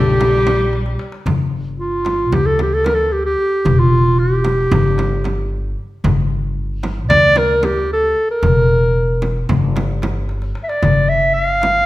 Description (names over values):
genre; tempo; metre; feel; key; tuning
Turkish makam ensemble; 226 BPM (eighths); 9/8; straight; G makam nikriz; A4 = 440 Hz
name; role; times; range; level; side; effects
mellow clarinet; melody; 0.0-11.9 s; F4 to F5; -15 LUFS; equal; none
clear cello; second line; 0.0-1.0 s; G3; -25 LUFS; left 3 dB; none
qanun; second line; 0.0-1.2 s; D4 to A4; -32 LUFS; right 4 dB; none
upright bass; bass; 0.0-11.9 s; E1 to D2; -19 LUFS; equal; none
darbuka; percussion; 0.2-11.7 s; none; -21 LUFS; left 4 dB; none
frame drum; percussion; 0.2-11.8 s; none; -22 LUFS; right 2 dB; none
room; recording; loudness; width
moderate recital hall reverb, RT60 1.4 s; none; -14 LUFS; side -16 dB against mid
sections
0.0-1.3 A section; 1.3-11.9 B section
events
drum fill 0.7-1.3, 10.3-10.8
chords
none